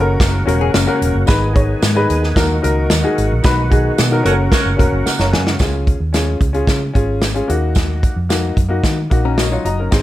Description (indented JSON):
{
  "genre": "uptempo 1960s-style soul",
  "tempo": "111 BPM",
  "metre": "4/4",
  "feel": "straight",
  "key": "unclear",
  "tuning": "A4 = 441 Hz",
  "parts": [
    { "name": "warm upright piano", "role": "accompaniment", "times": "0.0-10.0 s", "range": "Bb3 to A#5", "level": "-19 LUFS", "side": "left 2 dB", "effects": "none" },
    { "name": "overdriven tonewheel organ", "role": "sustained chords", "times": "0.0-5.6 s", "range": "C#3 to G#4", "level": "-23 LUFS", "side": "right 2 dB", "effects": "chorus vibrato, slow rotary speaker" },
    { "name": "vintage muted fingered electric bass", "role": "bass", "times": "0.0-10.0 s", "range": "E1 to Eb3", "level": "-18 LUFS", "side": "equal", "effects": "none" },
    { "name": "natural country drum kit", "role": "drums", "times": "0.2-10.0 s", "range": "hi-hat, kick drum, snare drum", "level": "-17 LUFS", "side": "equal", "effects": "none" },
    { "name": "tambourine", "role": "percussion", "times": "0.2-10.0 s", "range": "none", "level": "-29 LUFS", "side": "right 11 dB", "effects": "none" },
    { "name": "hollow-body jazz guitar", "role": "riff", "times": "0.5-1.3, 9.3-9.9 s", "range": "Gb3 to A#4", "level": "-22 LUFS", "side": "left 8 dB", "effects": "none" },
    { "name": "bright saxophone section", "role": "second line", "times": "4.2-4.7 s", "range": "C#4 to A#4", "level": "-20 LUFS", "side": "right 3 dB", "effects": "none" }
  ],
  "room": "light reverb",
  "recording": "none",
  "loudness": "-13 LUFS",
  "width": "side -14 dB against mid",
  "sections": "0.0-5.6 A section; 5.6-10.0 B section",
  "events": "band accent 3.4-5.6; drum fill 5.1-5.6; upright piano fill 9.1-9.9",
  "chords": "0.0 F#; 1.3 G#m; 2.4 D#m; 3.4 B; 4.3 F#; 5.6 Db; 7.5 Ebm",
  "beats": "0.21 0.74 | 1.28 1.82 2.36 2.90 | 3.44 3.98 4.52 5.06 | 5.60 6.14 6.68 7.22 | 7.76 8.30 8.84 9.38 | 9.92"
}